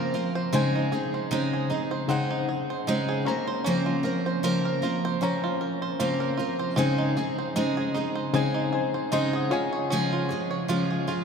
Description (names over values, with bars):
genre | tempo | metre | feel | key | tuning
acoustic pop | 77 BPM | 4/4 | swing 55% on 16ths | unclear | A4 = 440 Hz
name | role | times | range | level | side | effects
barky reed electric piano | accompaniment | 0.0-11.2 s | Db3 to Eb6 | -30 LUFS | left 4 dB | tremolo
picked steel-string acoustic guitar | accompaniment | 0.0-11.2 s | Db3 to Bb4 | -26 LUFS | right 1 dB | none
bluegrass banjo | arpeggios | 0.0-11.2 s | C4 to Db5 | -31 LUFS | right 4 dB | none
room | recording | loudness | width
wet cathedral reverb, RT60 6.5 s | in a vast, echoing space | -24 LUFS | side -6 dB against mid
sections
0.0-11.2 A section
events
none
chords
0.0 Bbmadd9/Db; 0.5 Ab/Db; 3.3 Bbmadd9/Db; 6.8 Ab/Db; 9.5 Db